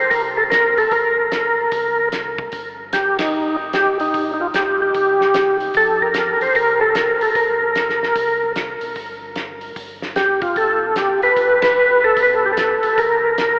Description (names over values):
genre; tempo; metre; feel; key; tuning
soul jazz organ trio; 149 BPM; 4/4; swing 64% on 8ths; unclear; A4 = 440 Hz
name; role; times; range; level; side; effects
percussive tonewheel organ; melody; 0.0-13.6 s; Eb4 to C5; -18 LUFS; equal; slow rotary speaker, overdrive, chorus vibrato
mellow tonewheel organ; bass; 0.0-13.6 s; E1 to F2; -46 LUFS; equal; slow rotary speaker
warm soul drum kit; drums; 0.1-13.5 s; hi-hat, kick drum, ride cymbal, snare drum; -30 LUFS; equal; none
room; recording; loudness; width
wet cathedral reverb, RT60 6.4 s; in a vast, echoing space, telephone sound; -17 LUFS; mono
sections
0.0-13.6 A section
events
band accent 3.1, 11.6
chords
0.0 C5; 3.3 Fadd9; 6.6 C5; 9.8 Gadd9; 13.0 C7(no3)